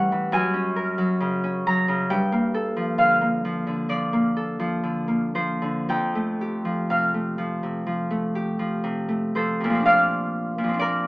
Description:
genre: classical, solo harp piece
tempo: 54-71 BPM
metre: 4/4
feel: rubato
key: unclear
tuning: A4 = 439 Hz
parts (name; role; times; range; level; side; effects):
- Celtic harp; solo; 0.0-11.1 s; F2 to Bb5; -21 LUFS; equal; none
room: light reverb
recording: small speaker sound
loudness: -21 LUFS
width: side -22 dB against mid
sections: 0.0-9.9 A section; 9.9-11.1 B section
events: none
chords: 0.3 Gb9; 2.1 Gm9; 5.9 Fadd9; 9.9 Bbadd9

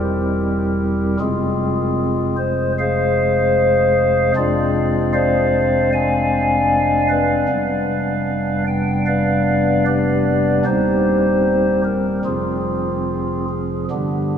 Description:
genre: classical, chorale-style piece for pipe organ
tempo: 76 BPM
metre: 4/4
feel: rubato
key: unclear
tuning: A4 = 440 Hz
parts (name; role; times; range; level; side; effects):
- pipe organ, stopped flute; solo; 0.0-14.4 s; Eb1 to Ab5; -16 LUFS; equal; none
room: wet cathedral reverb, RT60 5.3 s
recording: small room ambience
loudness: -16 LUFS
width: side -8 dB against mid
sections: 0.0-14.4 A section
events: none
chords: 0.0 C7/E; 1.2 Fm; 4.4 Dm7b5/F; 7.5 G7/F; 10.7 Cm/Eb; 12.3 Fm

